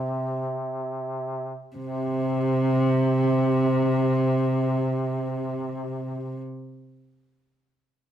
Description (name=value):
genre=caucasian folk, Caucasian lament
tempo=free time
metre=none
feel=none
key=unclear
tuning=A4 = 440 Hz
part: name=dark cello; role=melody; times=0.0-6.4 s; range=C3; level=-23 LUFS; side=equal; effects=none
part: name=warm duduk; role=drone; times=0.0-6.4 s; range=C3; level=-30 LUFS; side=equal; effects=none
room=moderate stone room reverb, RT60 1.0 s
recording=band playing live in one room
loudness=-23 LUFS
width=side -10 dB against mid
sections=0.0-1.8 A section; 1.8-6.4 B section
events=none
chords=none